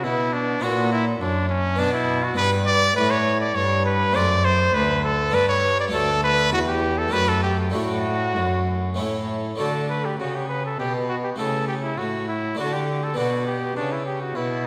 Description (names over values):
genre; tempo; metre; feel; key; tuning
classical, baroque-style sonata movement with continuo; 101 BPM; 3/4; straight; D major; A4 = 437 Hz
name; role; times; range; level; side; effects
brilliant trumpet; melody; 0.0-14.7 s; C#4 to D5; -25 LUFS; equal; none
harpsichord; accompaniment; 0.0-14.7 s; D2 to F#4; -30 LUFS; equal; none
rich cello; bass; 0.0-14.7 s; D2 to D3; -27 LUFS; equal; none
room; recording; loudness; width
wet scoring stage reverb, RT60 1.9 s; recorded in a church or concert hall; -22 LUFS; mono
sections
0.0-9.6 A section; 9.6-14.7 A section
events
none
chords
0.0 Bm; 0.6 F#7/A#; 1.8 Bm; 2.4 G; 4.2 D7/F#; 5.3 G; 5.9 D; 7.1 D/F#; 9.0 A; 9.6 D; 11.4 A/C#; 12.6 D5; 13.2 Bm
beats
0.04 | 0.63 1.21 1.79 | 2.38 2.97 3.56 | 4.15 4.74 5.33 | 5.92 6.52 7.13 | 7.74 8.36 8.98 | 9.60 10.20 10.80 | 11.40 11.99 12.59 | 13.17 13.77 14.36